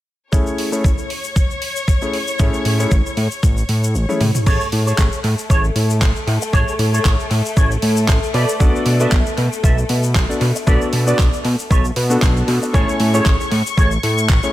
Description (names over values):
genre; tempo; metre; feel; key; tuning
nu-disco, nu disco; 116 BPM; 4/4; swing 55% on 16ths; A major; A4 = 438 Hz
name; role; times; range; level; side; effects
warm electric grand piano; accompaniment; 0.3-4.2, 8.6-14.5 s; A3 to G#5; -21 LUFS; left 1 dB; low-pass filter, analog delay
warm symphonic string section; sustained chords; 0.3-14.5 s; A3 to C#6; -26 LUFS; left 3 dB; sidechain pumping
electronic kick drum; drums; 0.3-14.4 s; none; -16 LUFS; equal; none
tube shaker; percussion; 0.3-14.5 s; none; -31 LUFS; left 4 dB; none
pop drum kit; drums; 0.6-14.4 s; crash cymbal, handclaps, hi-hat, toms; -25 LUFS; right 1 dB; overdrive, analog delay
fat analog bass; bass; 2.4-14.4 s; A1 to B2; -17 LUFS; equal; tube saturation
electric guitar with an envelope filter; riff; 4.5-14.1 s; G#4 to E5; -24 LUFS; right 2 dB; ensemble chorus, analog delay
room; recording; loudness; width
little or no reverb; echo-heavy mix; -14 LUFS; side -14 dB against mid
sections
0.3-4.5 A section; 4.5-14.5 B section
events
kick drops out 3.9-4.5; drum fill 4.1-4.5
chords
0.3 Amaj7; 4.2 A; 4.5 Amaj7; 8.3 Bm7; 12.7 Amaj7